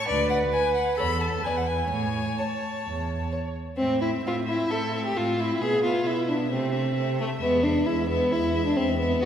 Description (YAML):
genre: quick classical-period movement for string quartet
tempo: 133 BPM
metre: 4/4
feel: straight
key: A major, A minor from 3.8 s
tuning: A4 = 441 Hz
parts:
  - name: rich violin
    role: melody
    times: 0.0-9.3 s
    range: D5 to B5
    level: -31 LUFS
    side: left 4 dB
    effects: none
  - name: clear viola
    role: accompaniment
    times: 0.0-9.3 s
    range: G#3 to C#5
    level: -31 LUFS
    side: right 2 dB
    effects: none
  - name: warm cello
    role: bass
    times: 0.1-9.3 s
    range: D2 to C3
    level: -30 LUFS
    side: right 2 dB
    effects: none
  - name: warm violin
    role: second line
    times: 0.5-9.3 s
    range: A3 to D5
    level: -25 LUFS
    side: equal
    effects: none
room: wet concert hall reverb, RT60 1.8 s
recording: recorded in a church or concert hall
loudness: -23 LUFS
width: side -9 dB against mid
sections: 0.0-3.8 A section; 3.8-9.3 B section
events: none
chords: 0.1 Bm/D; 1.0 A5/E; 1.4 E; 1.9 A; 3.8 Am; 5.6 E5/B; 6.5 Am/C; 7.4 E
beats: | 0.08 0.53 0.98 1.44 | 1.90 2.38 2.85 3.32 | 3.79 4.25 4.70 5.16 | 5.61 6.06 6.51 6.96 | 7.42 7.87 8.32 8.77 | 9.21